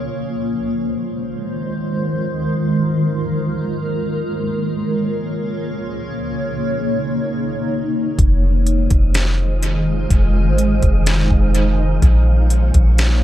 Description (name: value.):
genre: hip hop, atmospheric cloud-rap.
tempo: 125 BPM.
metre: 4/4.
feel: half-time.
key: Bb minor.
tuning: A4 = 440 Hz.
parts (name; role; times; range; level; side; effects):
granular cloud pad; sustained chords; 0.0-13.2 s; Db3 to Db5; -20 LUFS; equal; built-in reverb, sidechain pumping.
soft 808-style bass; bass; 8.2-13.2 s; F1 to Bb1; -15 LUFS; equal; none.
smooth R&B drum kit; drums; 8.2-13.1 s; hi-hat, kick drum, snare drum; -17 LUFS; equal; tape echo.
wind-like tuned noise texture; texture; 8.7-13.2 s; Ab3 to Eb5; -31 LUFS; right 3 dB; built-in reverb.
room: little or no reverb.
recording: echo-heavy mix, faint mains hum.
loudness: -16 LUFS.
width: side -13 dB against mid.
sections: 0.0-13.2 A section.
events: none.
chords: 0.0 Bbm; 0.5 Fm7; 4.3 Bbm; 8.2 Fm7; 12.0 Bbm.